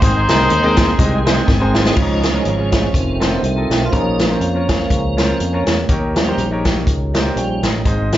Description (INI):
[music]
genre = uptempo gospel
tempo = 122 BPM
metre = 4/4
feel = swing 56% on 8ths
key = unclear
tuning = A4 = 440 Hz
[part]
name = clear horn section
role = melody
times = 0.0-1.5 s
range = Eb4 to C5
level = -17 LUFS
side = left 1 dB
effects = slapback echo
[part]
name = clear baby grand piano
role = accompaniment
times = 0.0-8.2 s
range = Ab2 to Ab5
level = -22 LUFS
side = equal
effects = none
[part]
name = tonewheel organ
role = sustained chords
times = 0.0-7.6 s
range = Eb3 to Ab4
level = -21 LUFS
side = right 2 dB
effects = fast rotary speaker, chorus vibrato
[part]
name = fingered electric bass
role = bass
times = 0.0-8.2 s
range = F1 to F2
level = -20 LUFS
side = equal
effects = none
[part]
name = swinging big-band drum kit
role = drums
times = 0.0-8.2 s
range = crash cymbal, hi-hat, kick drum, snare drum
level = -17 LUFS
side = equal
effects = none
[part]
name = mellow French horn section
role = sustained chords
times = 2.0-8.2 s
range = Db4 to Eb5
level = -29 LUFS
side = equal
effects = none
[sound]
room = light reverb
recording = live gig heard through the venue's PA, club reverb, nothing above 7.7 kHz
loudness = -14 LUFS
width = side -13 dB against mid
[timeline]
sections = 0.0-2.0 A section; 2.0-8.2 B section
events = grand piano fill 1.2-2.0; drum fill 1.5-2.0; tonewheel organ solo 2.0-8.2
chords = 0.0 Ab; 2.0 Db; 2.9 F7; 3.9 Bbm; 5.9 Eb7